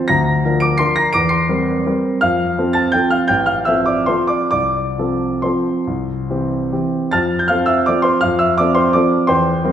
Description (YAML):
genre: classical, piano waltz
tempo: 130-178 BPM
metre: 3/4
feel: rubato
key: F major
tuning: A4 = 440 Hz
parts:
  - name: warm grand piano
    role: solo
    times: 0.0-9.7 s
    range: A1 to D7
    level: -14 LUFS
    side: equal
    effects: none
room: wet recital hall reverb, RT60 1.6 s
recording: recorded in a church or concert hall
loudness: -14 LUFS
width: side -9 dB against mid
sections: 0.0-7.1 A section; 7.1-9.7 B section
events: none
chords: 0.1 Bb/D; 1.1 C7/E; 2.2 F; 3.3 F/A; 4.5 F/C; 5.9 C; 7.1 F